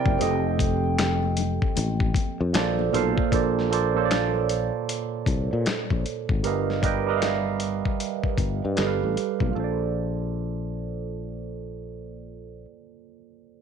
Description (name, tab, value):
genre	R&B, neo-soul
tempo	77 BPM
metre	4/4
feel	swing 63% on 16ths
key	Bb major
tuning	A4 = 440 Hz
part	warm grand piano	melody	0.0-2.5 s	G5	-32 LUFS	left 5 dB	tape echo
part	barky tine electric piano	accompaniment	0.0-13.6 s	Bb2 to G5	-27 LUFS	right 11 dB	overdrive, phaser
part	sustaining fretless electric bass	bass	0.1-12.6 s	F1 to Bb2	-27 LUFS	left 3 dB	none
part	dusty soul sampler-style drum kit	drums	0.1-9.5 s	finger snaps, hi-hat, kick drum, snare drum	-26 LUFS	left 3 dB	none
part	congas	percussion	0.2-3.2 s	none	-36 LUFS	left 14 dB	none
room	little or no reverb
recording	1960s-style stereo with parts hard left and right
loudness	-22 LUFS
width	side -7 dB against mid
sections	0.0-3.3 A section; 3.3-9.6 B section; 9.6-12.7 C section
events	none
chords	0.2 F9; 2.5 Bbmaj9; 6.4 G7alt; 8.8 G7; 9.6 Bbmaj9